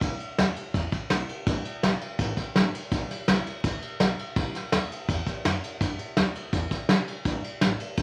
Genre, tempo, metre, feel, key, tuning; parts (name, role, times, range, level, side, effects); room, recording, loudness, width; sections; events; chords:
rockabilly; 166 BPM; 4/4; straight; A4 = 441 Hz
upright bass; bass; 0.0-8.0 s; G1 to G2; -37 LUFS; equal
soft brush drum kit; drums; 0.0-8.0 s; kick drum, ride cymbal, snare drum; -28 LUFS; equal
light reverb; vinyl crackle; -27 LUFS; mono
0.0-8.0 A section